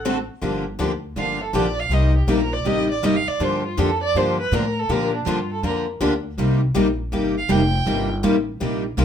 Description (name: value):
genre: acoustic string swing (jazz manouche)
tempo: 161 BPM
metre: 4/4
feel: swing 63% on 8ths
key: G minor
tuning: A4 = 440 Hz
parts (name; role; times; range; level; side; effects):
- warm violin; melody; 0.0-8.1 s; D4 to G5; -24 LUFS; right 2 dB; none
- upright bass; bass; 0.0-9.0 s; F1 to Bb2; -24 LUFS; equal; none
- picked steel-string acoustic guitar; accompaniment; 0.1-9.0 s; C3 to A4; -24 LUFS; left 6 dB; none
- picked steel-string acoustic guitar; accompaniment; 0.1-9.0 s; C3 to A4; -25 LUFS; right 6 dB; none
room: moderate studio reverb, RT60 0.6 s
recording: minimal, uncompressed stereo recording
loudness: -19 LUFS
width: side -8 dB against mid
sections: 0.4-9.0 A section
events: violin solo 0.4-9.0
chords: 0.4 Gm7; 1.9 Cm7; 3.4 Gm7; 6.4 Cm7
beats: 0.05 | 0.43 0.80 1.17 1.54 | 1.92 2.29 2.66 3.03 | 3.41 3.78 4.15 4.52 | 4.89 5.27 5.64 6.01 | 6.38 6.75 7.13 7.50 | 7.87 8.24 8.62 8.99